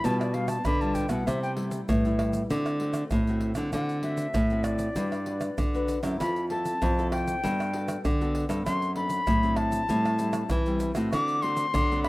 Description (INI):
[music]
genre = samba and choro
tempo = 97 BPM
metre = 4/4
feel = straight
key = G major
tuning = A4 = 440 Hz
[part]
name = concert flute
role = melody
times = 0.0-12.1 s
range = D5 to D6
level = -30 LUFS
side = left 1 dB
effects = none
[part]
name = nylon-string guitar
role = accompaniment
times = 0.0-12.1 s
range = G2 to B4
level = -34 LUFS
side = left 2 dB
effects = none
[part]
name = nylon-string guitar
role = bass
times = 0.0-12.1 s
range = F2 to E3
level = -28 LUFS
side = equal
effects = none
[part]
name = tube shaker, surdo, pandeiro and tamborim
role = percussion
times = 0.0-12.1 s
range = none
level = -31 LUFS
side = equal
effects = none
[sound]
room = small room reverb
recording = rough home demo mix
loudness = -24 LUFS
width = side -20 dB against mid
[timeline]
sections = 0.0-12.1 A section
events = flute solo 0.0-12.1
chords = 0.0 G7/B; 1.3 C6; 2.5 D7; 5.0 Gmaj7; 6.2 Fmaj7; 7.4 Gmaj9; 8.7 D7/F#; 9.9 Am7; 11.1 D7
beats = | 0.04 0.66 1.27 1.89 | 2.51 3.12 3.74 4.36 | 4.97 5.59 6.20 6.82 | 7.43 8.05 8.67 9.28 | 9.90 10.51 11.13 11.74